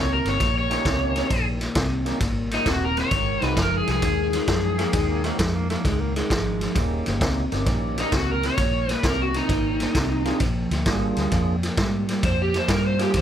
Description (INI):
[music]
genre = electric blues shuffle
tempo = 132 BPM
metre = 4/4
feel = swing 68% on 8ths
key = Eb mixolydian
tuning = A4 = 440 Hz
[part]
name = overdriven slide guitar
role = melody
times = 0.0-5.2, 8.0-13.2 s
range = Eb4 to Db5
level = -25 LUFS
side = equal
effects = none
[part]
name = electric guitar through a small old amp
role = riff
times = 0.0-13.2 s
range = Eb2 to G3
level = -27 LUFS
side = left 1 dB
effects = none
[part]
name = vintage muted fingered electric bass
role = bass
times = 0.0-13.2 s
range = Eb1 to Ab2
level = -27 LUFS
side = equal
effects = none
[part]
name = raw garage drum kit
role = drums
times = 0.3-13.2 s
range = kick drum, ride cymbal, snare drum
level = -25 LUFS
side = equal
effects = none
[part]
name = percussive tonewheel organ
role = accompaniment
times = 0.7-13.1 s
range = Ab3 to Ab4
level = -31 LUFS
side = right 4 dB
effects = slow rotary speaker, overdrive
[part]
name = mellow tenor saxophone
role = second line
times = 4.8-6.7 s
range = Ab3 to Bb3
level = -32 LUFS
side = right 3 dB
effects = tape echo
[sound]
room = little or no reverb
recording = none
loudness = -20 LUFS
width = side -10 dB against mid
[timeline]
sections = 0.0-13.2 A section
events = none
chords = 0.0 Eb7; 3.1 Ab7; 6.8 Eb7; 10.4 Bb7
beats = 0.40 0.85 | 1.30 1.76 2.21 2.66 | 3.12 3.57 4.03 4.48 | 4.93 5.39 5.84 6.30 | 6.75 7.21 7.67 8.12 | 8.58 9.04 9.49 9.95 | 10.40 10.86 11.32 11.77 | 12.23 12.69 13.14